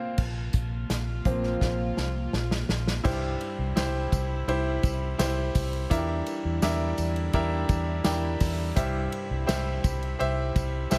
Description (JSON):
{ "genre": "piano-driven pop", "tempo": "84 BPM", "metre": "4/4", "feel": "straight", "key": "C mixolydian", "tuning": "A4 = 440 Hz", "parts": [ { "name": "bright concert grand piano", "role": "accompaniment", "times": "0.0-11.0 s", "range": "G2 to G5", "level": "-32 LUFS", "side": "equal", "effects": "none" }, { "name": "warm studio string section", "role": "sustained chords", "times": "0.0-11.0 s", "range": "C3 to F4", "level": "-40 LUFS", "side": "equal", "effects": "none" }, { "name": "vintage muted fingered electric bass", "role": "bass", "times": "0.2-11.0 s", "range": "Bb1 to E2", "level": "-32 LUFS", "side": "equal", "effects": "none" }, { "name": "unplugged drum kit", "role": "drums", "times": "0.2-11.0 s", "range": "crash cymbal, hi-hat, kick drum, ride cymbal, snare drum", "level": "-32 LUFS", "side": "equal", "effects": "none" }, { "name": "tambourine", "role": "percussion", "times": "3.0-11.0 s", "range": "none", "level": "-46 LUFS", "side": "equal", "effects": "none" } ], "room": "light reverb", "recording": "none", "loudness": "-28 LUFS", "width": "mono", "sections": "0.2-3.0 A section; 3.0-11.0 B section", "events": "band accent 0.0; grand piano solo 0.2-3.0; drum fill 1.6-3.0", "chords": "0.2 Bbsus2; 3.0 C; 5.9 Em7b5; 8.8 C" }